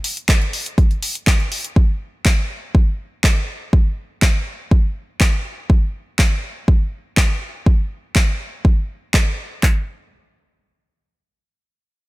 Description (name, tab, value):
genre	house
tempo	122 BPM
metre	4/4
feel	straight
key	none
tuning	none
part	deep house drum kit	drums	0.0-9.2 s	handclaps, hi-hat	-22 LUFS	equal	none
part	deep house drum kit	drums	0.3-9.8 s	handclaps, kick drum	-14 LUFS	equal	none
room	digital ambience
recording	none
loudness	-16 LUFS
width	side -20 dB against mid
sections	0.0-9.6 A section; 9.6-12.1 B section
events	none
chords	none